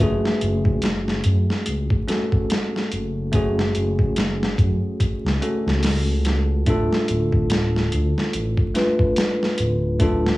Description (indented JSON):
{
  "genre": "trip hop",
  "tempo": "72 BPM",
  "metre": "4/4",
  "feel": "swing 58% on 16ths",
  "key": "F# harmonic minor",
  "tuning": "A4 = 440 Hz",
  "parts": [
    { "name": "bell-like tine electric piano", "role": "accompaniment", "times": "0.0-10.4 s", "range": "A3 to B4", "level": "-23 LUFS", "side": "equal", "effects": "harmonic tremolo, tape echo" },
    { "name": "dark detuned saw bass", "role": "bass", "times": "0.0-10.4 s", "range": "D1 to F#2", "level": "-22 LUFS", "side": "equal", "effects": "none" },
    { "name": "boom bap sampler-style drum kit", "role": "drums", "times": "0.3-10.4 s", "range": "hi-hat, kick drum, snare drum", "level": "-22 LUFS", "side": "equal", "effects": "overdrive, cassette tape" }
  ],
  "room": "little or no reverb",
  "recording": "home recording on cassette, vinyl crackle, studio reverb",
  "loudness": "-18 LUFS",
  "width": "side -18 dB against mid",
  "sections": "0.0-10.4 A section",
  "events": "none",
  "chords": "0.0 F#madd9; 6.7 Dm",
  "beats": "| 0.00 0.83 1.67 2.50 | 3.33 4.17 5.00 5.83 | 6.67 7.50 8.33 9.16 | 10.00"
}